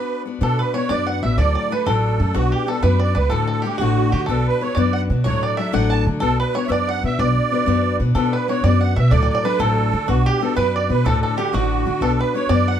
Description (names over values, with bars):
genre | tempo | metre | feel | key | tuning
celtic folk, Celtic jig | 124 BPM (dotted quarters) | 6/8 | straight | B minor | A4 = 441 Hz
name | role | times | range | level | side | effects
musette accordion | melody | 0.0-12.8 s | F#4 to A5 | -23 LUFS | right 7 dB | plate reverb
picked steel-string acoustic guitar | accompaniment | 0.0-12.8 s | D2 to B4 | -22 LUFS | left 7 dB | none
bluegrass banjo | second line | 0.4-12.8 s | F#4 to A5 | -27 LUFS | equal | none
upright bass | bass | 0.4-12.8 s | A1 to D3 | -20 LUFS | right 1 dB | none
room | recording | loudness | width
moderate studio reverb, RT60 0.5 s | dark, warm production | -16 LUFS | side -9 dB against mid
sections
0.4-8.2 A section; 8.2-12.8 A section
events
none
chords
0.4 Bm; 1.4 D; 2.3 Bm; 3.3 D; 4.3 Bm; 5.3 D; 6.2 Bm; 9.1 D; 10.1 Bm; 11.0 D; 12.0 Bm